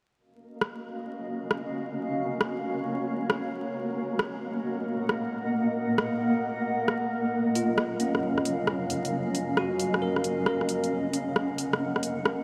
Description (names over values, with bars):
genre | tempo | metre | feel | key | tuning
future garage | 134 BPM | 4/4 | swing 67% on 16ths | Eb minor | A4 = 440 Hz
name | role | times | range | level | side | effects
granular cloud pad | sustained chords | 0.9-12.4 s | Gb3 to Gb5 | -31 LUFS | equal | built-in reverb
flickering grainy texture | texture | 0.6-12.4 s | Bb3 to Bb4 | -38 LUFS | equal | built-in reverb
deep house drum kit | drums | 0.6-12.4 s | hi-hat, rim click | -32 LUFS | equal | none
bell-like tine electric piano | accompaniment | 7.6-11.0 s | Db4 to Bb4 | -34 LUFS | equal | tape echo
room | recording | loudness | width
moderate huge ambient reverb, RT60 5.1 s | vinyl crackle | -29 LUFS | mono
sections
0.2-12.4 A section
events
none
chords
0.2 Ebm9; 3.8 Ebm/Bb; 7.3 Ebm9; 10.9 Gb6